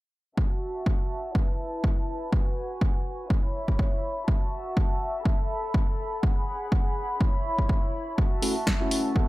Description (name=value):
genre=filtered disco house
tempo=123 BPM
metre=4/4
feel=swing 56% on 16ths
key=F# minor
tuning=A4 = 439 Hz
part: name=warm symphonic violin section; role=sustained chords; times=0.4-9.3 s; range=E4 to B5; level=-32 LUFS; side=equal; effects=sidechain pumping, low-pass filter
part: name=electronic kick drum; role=drums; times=0.4-9.3 s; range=none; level=-25 LUFS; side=equal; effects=none
part: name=tambourine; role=percussion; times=8.2-9.3 s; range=none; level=barely audible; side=none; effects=none
part: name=overdriven tine electric piano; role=accompaniment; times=8.4-9.3 s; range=A3 to F#4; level=-27 LUFS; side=left 1 dB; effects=phaser, sidechain pumping, low-pass filter
part: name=punchy analog drum machine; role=drums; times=8.4-9.0 s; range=hi-hat, snare drum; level=-29 LUFS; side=equal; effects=sidechain pumping on hats
room=little or no reverb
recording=none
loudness=-24 LUFS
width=side -18 dB against mid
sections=0.4-9.3 A section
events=filter sweep 0.4-9.3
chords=0.4 F#m7; 1.4 B7sus4; 2.3 G#m7; 3.3 C#m7; 4.3 F#m7; 5.3 B7sus4; 6.2 G#m7; 7.2 C#m7; 8.2 F#m7